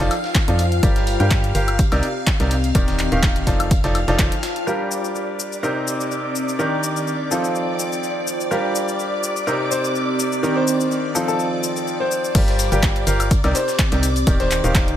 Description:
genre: piano house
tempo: 125 BPM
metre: 4/4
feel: swing 54% on 16ths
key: G minor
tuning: A4 = 440 Hz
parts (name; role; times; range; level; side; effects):
- string machine, violins; sustained chords; 0.0-15.0 s; D5 to F6; -28 LUFS; equal; ensemble chorus, sidechain pumping
- bright upright piano; riff; 0.0-15.0 s; C3 to G5; -23 LUFS; equal; sidechain pumping, ping-pong delay
- organ-like FM bass; bass; 0.0-4.3, 12.3-15.0 s; Eb1 to G2; -21 LUFS; equal; sidechain pumping
- dusty soul sampler-style drum kit; drums; 0.0-4.6, 12.3-14.9 s; hi-hat, snare drum; -32 LUFS; right 1 dB; sidechain pumping on hats, high-pass filter on hats, high-pass filter on snare, high-pass filter on room
- punchy analog drum machine; drums; 0.0-15.0 s; cabasa, crash cymbal, handclaps, hi-hat, woodblock; -26 LUFS; left 2 dB; overdrive
- warbly tape-like pad; texture; 0.0-15.0 s; Eb3 to Bb5; -27 LUFS; equal; chorus, built-in reverb, sidechain pumping
- electronic kick drum; drums; 0.3-4.3, 12.3-14.9 s; none; -19 LUFS; equal; overdrive
- warm grand piano; melody; 9.7-14.9 s; A4 to C5; -25 LUFS; left 2 dB; ping-pong delay
room: light reverb, digital ambience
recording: none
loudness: -17 LUFS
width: side -11 dB against mid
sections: 0.0-4.7 A section; 4.7-12.3 B section; 12.3-15.0 C section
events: filter sweep on string machine 4.7-12.3; drop 12.3-15.0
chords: 0.0 F7; 0.8 Gm7; 1.8 Cm7; 2.8 Ebmaj7; 3.5 F7; 4.7 Gm7; 5.6 Cm7; 6.6 Ebmaj7; 7.3 F7; 8.5 Gm7; 9.5 Cm7; 10.4 Ebmaj7; 11.2 F7; 12.3 Gm7; 13.3 Cm7; 14.3 Ebmaj7

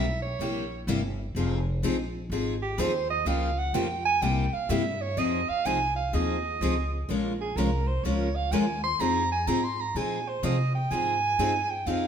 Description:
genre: acoustic string swing (jazz manouche)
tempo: 126 BPM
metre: 4/4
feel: swing 66% on 8ths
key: F minor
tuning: A4 = 440 Hz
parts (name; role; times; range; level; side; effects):
- warm soprano saxophone; second line; 0.0-12.1 s; G4 to C6; -28 LUFS; right 4 dB; none
- picked steel-string acoustic guitar; accompaniment; 0.0-12.1 s; C3 to Bb4; -30 LUFS; left 6 dB; none
- picked steel-string acoustic guitar; accompaniment; 0.0-12.1 s; C3 to Bb4; -35 LUFS; right 6 dB; none
- upright bass; bass; 0.0-12.1 s; F1 to C3; -31 LUFS; equal; none
room: wet stone room reverb, RT60 1.2 s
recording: band playing live in one room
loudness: -25 LUFS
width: side -8 dB against mid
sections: 0.0-5.2 A section; 5.2-12.1 A section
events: soprano saxophone solo 0.0-12.1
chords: 0.0 C7b9; 1.4 Fm7; 3.3 Gm7b5; 4.2 C7; 5.2 Fm7; 7.1 Bbm7; 9.0 Fm7

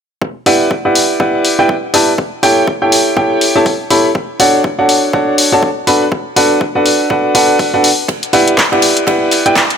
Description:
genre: piano house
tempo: 122 BPM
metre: 4/4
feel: swing 58% on 16ths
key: E dorian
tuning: A4 = 442 Hz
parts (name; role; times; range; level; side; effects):
- electronic kick drum; drums; 0.2-9.7 s; none; -20 LUFS; equal; high-pass filter on kick, high-pass filter on room
- clear upright piano; riff; 0.5-9.6 s; D4 to B5; -11 LUFS; equal; sidechain pumping, low-pass filter, ping-pong delay
- punchy analog drum machine; drums; 0.5-9.8 s; handclaps, hi-hat; -14 LUFS; left 2 dB; none
- natural country drum kit; drums; 8.1-9.8 s; ride cymbal, snare drum; -21 LUFS; right 4 dB; high-pass filter on cymbals, high-pass filter on snare, high-pass filter on room
room: light reverb, small room ambience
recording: none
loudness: -9 LUFS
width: side -7 dB against mid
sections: 0.2-9.8 A section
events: none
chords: 0.2 Em9; 2.2 A7/E; 4.2 Dmaj7; 5.9 Bm7; 8.1 Em9

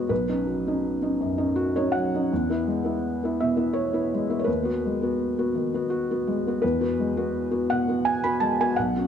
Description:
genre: neoclassical minimalist piano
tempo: 84 BPM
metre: 3/4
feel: rubato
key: E major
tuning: A4 = 437 Hz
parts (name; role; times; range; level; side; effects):
- felt-muted upright piano; solo; 0.0-9.1 s; B1 to B5; -23 LUFS; equal; none
room: moderate scoring stage reverb, RT60 1.6 s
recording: dark, warm production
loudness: -23 LUFS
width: side -8 dB against mid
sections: 0.0-9.1 A section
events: none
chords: 0.1 Badd9; 2.3 Eadd9; 4.5 G#m7/D#; 6.6 Eadd9 (rootless)

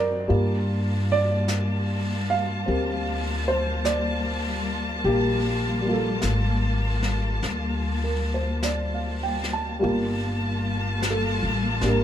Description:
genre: jazz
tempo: 50 BPM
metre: 4/4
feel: swing 69% on 8ths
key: G minor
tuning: A4 = 443 Hz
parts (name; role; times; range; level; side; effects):
- dark baby grand piano; accompaniment; 0.0-12.0 s; Eb3 to A5; -27 LUFS; right 2 dB; none
- warm studio string section; sustained chords; 0.0-12.0 s; F#3 to A5; -28 LUFS; left 2 dB; none
- upright bass; bass; 0.0-12.0 s; G1 to G2; -26 LUFS; equal; none
- jazz brush drum kit; drums; 0.3-12.0 s; brushed snare drum, hi-hat, snare drum; -35 LUFS; left 2 dB; none
room: little or no reverb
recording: none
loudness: -22 LUFS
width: side -10 dB against mid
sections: 0.0-9.8 A section; 9.8-12.0 B section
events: none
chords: 0.3 Gm9

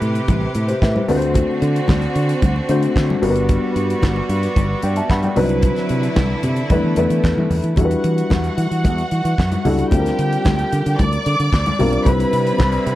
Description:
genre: disco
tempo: 112 BPM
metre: 4/4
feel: straight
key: unclear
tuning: A4 = 436 Hz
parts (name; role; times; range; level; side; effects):
- dark concert grand piano; accompaniment; 0.0-13.0 s; F#3 to B5; -21 LUFS; left 2 dB; none
- clear studio string section; sustained chords; 0.0-7.8, 12.1-13.0 s; C3 to B4; -25 LUFS; right 2 dB; none
- fingered electric bass; bass; 0.0-13.0 s; G1 to E3; -20 LUFS; equal; none
- damped 70s drum kit; drums; 0.0-13.0 s; handclaps, hi-hat, kick drum, snare drum; -20 LUFS; equal; none
- congas; percussion; 0.3-12.8 s; none; -25 LUFS; left 2 dB; none
- dark studio string section; second line; 7.8-13.0 s; F#4 to D6; -23 LUFS; right 1 dB; none
room: little or no reverb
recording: dry, close 1970s-style studio recording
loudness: -15 LUFS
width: side -15 dB against mid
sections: 0.0-7.8 A section; 7.8-13.0 B section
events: none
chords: 0.0 Am9; 1.1 D7; 3.2 Gmaj7; 5.4 Cmaj9#11; 6.7 E7sus4; 7.8 Em9; 9.9 Bb69/D; 12.1 Cmaj9

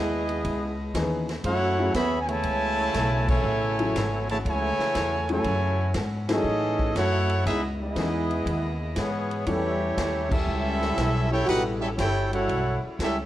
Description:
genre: jazz, big band swing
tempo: 120 BPM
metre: 4/4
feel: swing 68% on 8ths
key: unclear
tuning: A4 = 441 Hz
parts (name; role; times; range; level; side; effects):
- clear trumpet section; melody; 0.0-13.2 s; A3 to B5; -27 LUFS; equal; none
- mellow trombone section; second line; 0.0-13.2 s; C#3 to G4; -30 LUFS; right 2 dB; none
- warm saxophone section; sustained chords; 0.0-13.3 s; B2 to D#5; -40 LUFS; left 2 dB; none
- upright bass; bass; 0.0-13.3 s; G1 to A2; -29 LUFS; equal; none
- swinging big-band drum kit; drums; 0.3-13.2 s; crash cymbal, hi-hat, kick drum, ride cymbal, snare drum; -33 LUFS; equal; none
- warm upright piano; accompaniment; 0.9-11.8 s; E3 to A4; -30 LUFS; left 2 dB; none
room: moderate recital hall reverb, RT60 1.4 s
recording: worn, warbling old tape, cassette tape, warbly pitch drift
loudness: -23 LUFS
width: side -13 dB against mid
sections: 0.0-13.3 A section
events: band accent 3.2, 6.2, 10.2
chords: 0.0 C#m9; 1.4 F#m9; 7.5 C#m9; 9.5 A7

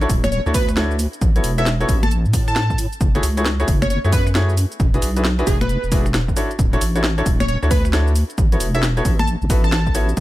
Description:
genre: UK garage, two-step garage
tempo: 134 BPM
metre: 4/4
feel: swing 64% on 16ths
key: unclear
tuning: A4 = 441 Hz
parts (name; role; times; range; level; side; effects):
- bright grand piano; stabs; 0.0-10.1 s; A3 to C#5; -24 LUFS; left 1 dB; digital delay
- deep soft wobble bass; bass; 0.0-10.2 s; D1 to A2; -19 LUFS; equal; chorus
- garage drum kit; drums; 0.0-10.2 s; cabasa, congas, finger snaps, hi-hat, snare drum; -25 LUFS; left 1 dB; studio reverb
- electronic kick drum; drums; 0.1-10.2 s; none; -19 LUFS; equal; studio reverb
- plucky unison lead; melody; 0.2-9.9 s; G#4 to A5; -26 LUFS; right 1 dB; vintage 12-bit sampler grit, digital delay
room: little or no reverb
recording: none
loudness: -16 LUFS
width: side -16 dB against mid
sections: 0.0-10.2 A section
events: none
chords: 0.0 Dmaj9; 1.2 A69; 3.0 F#m9; 4.8 E7; 6.4 Dmaj9; 8.4 A69

